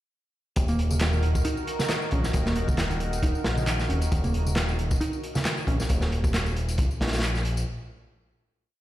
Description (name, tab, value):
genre	breakbeat, breaks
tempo	135 BPM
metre	4/4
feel	swing 55% on 16ths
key	Eb minor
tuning	A4 = 440 Hz
part	phased analog pad	sustained chords	0.8-5.9 s	Eb3 to Bb4	-34 LUFS	right 1 dB	phaser, chorus, sidechain pumping
part	picked electric bass	riff	0.6-5.8 s	Db3 to Eb4	-31 LUFS	equal	vintage 12-bit sampler grit, digital delay
part	fat analog bass	bass	0.6-7.6 s	Eb1 to Db2	-26 LUFS	equal	tube saturation
part	crunchy breakbeat drum kit	drums	0.6-7.7 s	hi-hat, kick drum, snare drum	-28 LUFS	equal	none
part	electronic tambourine and handclaps	drums	0.6-7.7 s	none	-34 LUFS	equal	overdrive
part	congas	percussion	4.2-5.4 s	none	-34 LUFS	right 3 dB	none
room	small room ambience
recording	played on a big sound system in a bare room, stone room reverb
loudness	-23 LUFS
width	side -14 dB against mid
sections	0.6-7.7 drop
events	drop 0.6-7.7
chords	0.6 Ebm